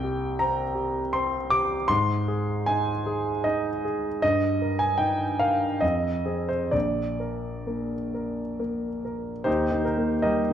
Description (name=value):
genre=classical, romantic character piece for solo piano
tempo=62-80 BPM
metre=3/4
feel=rubato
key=Eb major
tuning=A4 = 441 Hz
part: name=clear grand piano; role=solo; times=0.0-10.5 s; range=Bb1 to D6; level=-24 LUFS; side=equal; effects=none
room=moderate recital hall reverb, RT60 1.4 s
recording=dark, warm production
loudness=-24 LUFS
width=side -9 dB against mid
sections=0.0-9.5 A section; 9.5-10.5 B section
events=none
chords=0.0 C5; 1.9 Ab; 4.2 Eb/G; 5.8 Fm7; 6.7 N.C.; 9.5 Eb